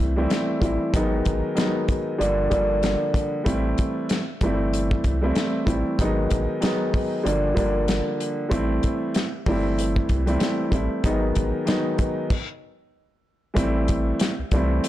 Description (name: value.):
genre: hip hop, boom-bap hip-hop.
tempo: 95 BPM.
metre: 4/4.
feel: swing 59% on 16ths.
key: unclear.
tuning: A4 = 440 Hz.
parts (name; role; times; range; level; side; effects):
dark upright piano; accompaniment; 0.0-14.9 s; D3 to E4; -23 LUFS; equal; cassette tape, high-pass filter, low-pass filter.
round analog bass; bass; 0.0-14.8 s; G1 to C2; -26 LUFS; equal; none.
warm soul drum kit; drums; 0.3-14.9 s; crash cymbal, hi-hat, kick drum, snare drum; -24 LUFS; equal; none.
room: light reverb, studio ambience.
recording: blown-out, overdriven recording, overdrive.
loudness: -21 LUFS.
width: side -14 dB against mid.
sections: 0.0-13.6 A section; 13.6-14.9 B section.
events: stop 12.3-13.6.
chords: 0.0 Am7; 0.9 G#m7; 2.2 Gm7; 3.5 Am7; 6.0 G#m7; 7.3 Gm7; 8.5 Am7; 11.0 G#m7; 12.3 N.C.; 13.6 Am7.